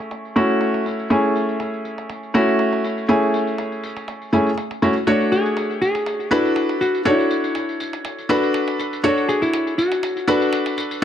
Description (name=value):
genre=deep house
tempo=121 BPM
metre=4/4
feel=swing 54% on 16ths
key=unclear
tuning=A4 = 440 Hz
part: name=felt-muted upright piano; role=stabs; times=0.0-11.0 s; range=A3 to C#5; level=-19 LUFS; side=equal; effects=low-pass filter, digital delay
part: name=electronic hi-hat and tambourine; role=drums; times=0.0-11.0 s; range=none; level=-34 LUFS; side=right 1 dB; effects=low-pass filter on hats, low-pass filter on snare, low-pass filter on perc, low-pass filter on room
part: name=hollow-body jazz guitar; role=melody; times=5.1-11.0 s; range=E4 to G#4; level=-22 LUFS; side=left 1 dB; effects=vintage 12-bit sampler grit, ping-pong delay
room=light reverb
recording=none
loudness=-18 LUFS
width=side -9 dB against mid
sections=0.0-11.0 A section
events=none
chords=0.0 F#m9; 5.1 Bm9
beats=0.11 0.61 | 1.10 1.60 2.10 2.59 | 3.09 3.58 4.08 4.58 | 5.07 5.57 6.06 6.56 | 7.05 7.55 8.05 8.54 | 9.04 9.53 10.03 10.53 | 11.02